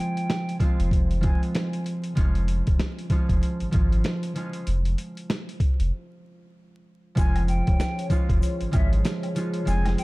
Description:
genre	hip hop, boom-bap hip-hop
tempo	96 BPM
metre	4/4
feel	swing 59% on 16ths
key	unclear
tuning	A4 = 439 Hz
part	concert flute	melody	0.0-1.4, 7.2-10.0 s	E5 to Ab5	-35 LUFS	left 1 dB	tape echo
part	concert harp	accompaniment	0.0-10.0 s	F3 to F4	-29 LUFS	right 1 dB	none
part	boom bap sampler-style drum kit	drums	0.2-10.0 s	hi-hat, kick drum, snare drum	-24 LUFS	equal	none
part	warm sub bass	bass	0.8-10.0 s	Eb1 to Ab1	-24 LUFS	equal	none
part	dark analog pad	sustained chords	7.2-10.0 s	F3 to Db5	-35 LUFS	left 2 dB	chorus
part	tube shaker and woodblock	percussion	7.2-10.0 s	none	-43 LUFS	left 3 dB	none
room	little or no reverb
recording	dark, warm production, vinyl crackle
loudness	-22 LUFS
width	side -22 dB against mid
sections	0.0-7.2 A section; 7.2-10.0 B section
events	break 4.7-7.2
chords	0.0 Fm; 2.2 Db; 4.7 N.C.; 7.2 Db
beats	0.30 0.92 1.55 | 2.17 2.80 3.42 4.05 | 4.67 5.30 5.92 6.55 | 7.17 7.80 8.42 9.05 | 9.67

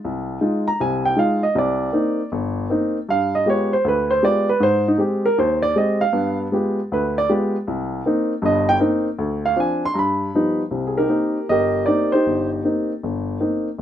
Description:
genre	solo jazz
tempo	157 BPM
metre	4/4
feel	swing 66% on 8ths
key	C minor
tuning	A4 = 438 Hz
part	warm upright piano	solo	0.0-13.8 s	G1 to C6	-18 LUFS	equal	none
room	light reverb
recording	minimal, uncompressed stereo recording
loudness	-18 LUFS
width	side -10 dB against mid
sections	0.0-10.7 A section; 10.7-13.8 B section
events	upright piano solo 0.0-10.7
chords	0.0 Fm7; 1.6 Cm7; 3.1 G7b9; 4.6 Abmaj7; 6.1 G7b9; 7.7 Cm7; 9.2 Dm7b5; 10.0 Gaug7; 10.7 Cm7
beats	| 0.03 0.41 0.79 1.17 | 1.55 1.93 2.32 2.70 | 3.08 3.46 3.84 4.23 | 4.61 4.99 5.37 5.75 | 6.14 6.52 6.90 7.28 | 7.67 8.05 8.43 8.81 | 9.19 9.58 9.96 10.34 | 10.72 11.11 11.49 11.88 | 12.26 12.64 13.03 13.41 | 13.79

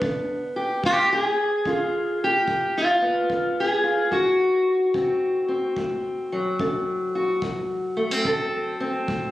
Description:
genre	acoustic country blues, solo or duo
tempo	73 BPM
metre	4/4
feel	swing 65% on 8ths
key	D mixolydian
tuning	A4 = 440 Hz
part	fingerpicked steel-string acoustic guitar	melody	0.0-9.3 s	D2 to A4	-21 LUFS	equal	slapback echo
part	kick drum	drums	0.0-9.3 s	none	-34 LUFS	right 1 dB	none
room	moderate studio reverb, RT60 0.6 s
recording	recorded on a phone in the room, studio reverb, compression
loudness	-21 LUFS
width	side -15 dB against mid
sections	0.0-9.3 A section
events	steel-string acoustic guitar solo 0.0-9.3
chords	0.0 G; 0.8 G#dim7; 4.1 D7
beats	0.01 | 0.83 1.66 2.48 3.30 | 4.12 4.95 5.78 6.60 | 7.43 8.26 9.08

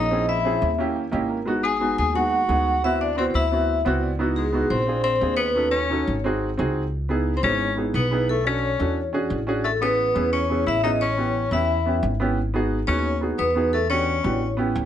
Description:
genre	jazz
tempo	176 BPM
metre	4/4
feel	straight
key	C# minor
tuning	A4 = 441 Hz
part	vibraphone with medium hard mallets	melody	0.0-14.5 s	G#4 to G#5	-24 LUFS	left 1 dB	slapback echo, plate reverb
part	warm tenor saxophone	second line	0.0-14.5 s	G#3 to G#4	-26 LUFS	left 4 dB	slapback echo
part	upright bass	bass	0.0-14.9 s	G#1 to E2	-26 LUFS	equal	none
part	dark baby grand piano	accompaniment	0.1-14.9 s	G#3 to G5	-25 LUFS	right 2 dB	none
room	moderate studio reverb, RT60 0.6 s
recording	nothing above 10.6 kHz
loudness	-20 LUFS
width	side -10 dB against mid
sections	0.0-6.9 A section; 6.9-14.9 B section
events	grand piano fill 0.8-1.5, 3.7-4.2, 14.6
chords	0.1 A#m7b5; 0.8 D#7b9; 1.5 G#m7; 2.8 D13; 4.2 C#m11; 4.9 A#7; 5.6 D#m7b5; 6.2 G#7; 6.9 C#m9; 8.3 Bm9; 9.0 E13; 9.6 Amaj9; 11.0 A9; 12.4 G#m7; 13.7 Em7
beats	| 0.11 0.45 0.79 1.13 | 1.47 1.81 2.16 2.50 | 2.84 3.18 3.52 3.86 | 4.20 4.54 4.88 5.22 | 5.56 5.90 6.24 6.58 | 6.92 7.26 7.60 7.94 | 8.28 8.62 8.96 9.30 | 9.64 9.98 10.32 10.66 | 11.01 11.35 11.69 12.03 | 12.37 12.71 13.05 13.39 | 13.73 14.07 14.41 14.75

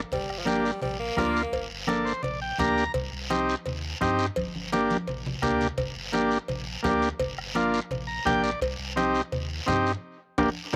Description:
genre	latin, cumbia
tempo	169 BPM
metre	4/4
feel	straight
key	G minor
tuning	A4 = 440 Hz
part	warm sub bass	bass	0.0-10.8 s	G1 to G2	-39 LUFS	equal	none
part	clear tenor saxophone	second line	0.1-1.7 s	F3 to Bb3	-35 LUFS	equal	slapback echo
part	bombo	percussion	0.1-10.8 s	none	-38 LUFS	equal	none
part	congas	percussion	0.1-10.8 s	none	-38 LUFS	equal	none
part	cowbell and timbales	percussion	0.1-10.5 s	none	-35 LUFS	equal	slapback echo
part	guiro	percussion	0.1-10.8 s	none	-40 LUFS	equal	none
part	combo organ	accompaniment	0.5-10.8 s	Bb3 to Bb5	-28 LUFS	equal	none
room	little or no reverb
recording	recorded outdoors, with no room sound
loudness	-27 LUFS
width	mono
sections	0.1-10.8 A section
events	transistor combo organ fill 1.9-3.0, 7.9-8.6; drum fill 4.4-5.8, 10.0-10.8; band accent 10.0-10.8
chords	0.1 Gm; 3.0 Cm; 4.4 Gm; 8.6 Cm; 10.0 Gm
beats	| 0.12 0.47 0.82 1.18 | 1.53 1.89 2.24 2.60 | 2.95 3.31 3.66 4.01 | 4.37 4.72 5.08 5.43 | 5.78 6.14 6.49 6.85 | 7.20 7.55 7.91 8.26 | 8.62 8.97 9.32 9.68 | 10.03 10.39 10.74

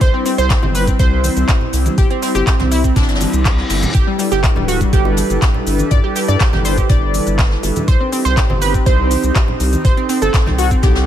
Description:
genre	progressive house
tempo	122 BPM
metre	4/4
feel	straight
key	unclear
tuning	A4 = 435 Hz
part	airy breathy pad	sustained chords	0.0-11.1 s	G3 to B4	-21 LUFS	equal	chorus, sidechain pumping
part	analog pluck	arpeggios	0.0-11.1 s	G3 to D5	-20 LUFS	right 1 dB	chorus, cassette tape, sidechain pumping, dub echo
part	round analog bass	bass	0.0-11.1 s	D1 to G2	-18 LUFS	equal	tube saturation, sidechain pumping
part	electronic kick drum	drums	0.0-10.9 s	none	-14 LUFS	equal	small room ambience
part	jazz brush drum kit	drums	0.0-11.1 s	hi-hat, snare drum	-28 LUFS	left 2 dB	high-pass filter on hats, small room ambience, high-pass filter on snare, high-pass filter on room
part	pop drum kit	drums	0.0-10.9 s	handclaps, hi-hat, shaker	-24 LUFS	left 1 dB	small room ambience
part	bongos and congas	percussion	0.1-10.9 s	none	-27 LUFS	right 1 dB	none
part	reverse cymbal	sound effects	3.1-3.9 s	none	-26 LUFS	left 3 dB	none
room	small room ambience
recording	none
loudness	-12 LUFS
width	side -11 dB against mid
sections	0.0-11.1 A section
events	reverse cymbal 3.1-3.9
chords	0.0 C; 3.9 G6; 7.9 Cm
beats	| 0.01 0.50 0.99 1.49 | 1.98 2.47 2.96 3.45 | 3.94 4.44 4.93 5.42 | 5.91 6.40 6.90 7.39 | 7.88 8.37 8.86 9.36 | 9.85 10.34 10.83

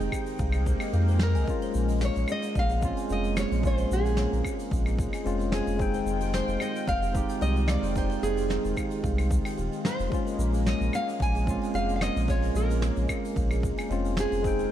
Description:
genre	sunset chillout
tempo	111 BPM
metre	4/4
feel	swing 54% on 16ths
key	Bb minor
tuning	A4 = 440 Hz
part	nylon-string guitar	melody	0.0-14.7 s	Ab4 to Ab5	-32 LUFS	equal	digital delay
part	bright tine electric piano	accompaniment	0.0-14.7 s	Ab3 to G5	-32 LUFS	moving between left 8 dB and right 8 dB	auto-pan, tape echo
part	lush unison pad	sustained chords	0.0-14.7 s	Eb3 to G5	-36 LUFS	left 1 dB	chorus
part	warm sub bass	bass	0.0-14.7 s	Eb1 to F2	-27 LUFS	equal	none
part	soft brush drum kit	drums	0.0-14.7 s	claves, hi-hat, shaker, snare drum	-36 LUFS	equal	none
part	buzzing kalimba	arpeggios	0.1-14.7 s	G4 to Ab5	-39 LUFS	right 5 dB	tape echo
part	electronic kick drum	drums	0.1-14.6 s	none	-31 LUFS	equal	overdrive
part	swell	sound effects	0.6-1.5 s	none	-40 LUFS	right 7 dB	none
room	light reverb, studio reverb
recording	dark, warm production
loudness	-24 LUFS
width	side -11 dB against mid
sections	0.0-14.7 A section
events	swell 0.6-1.5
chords	0.0 Fm9; 1.5 Bbm9; 5.8 Fm9; 10.1 Bbm9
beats	0.39 0.93 | 1.47 2.01 2.55 3.10 | 3.63 4.18 4.72 5.26 | 5.80 6.34 6.88 7.42 | 7.96 8.50 9.04 9.58 | 10.12 10.66 11.20 11.74 | 12.28 12.82 13.37 13.91 | 14.45

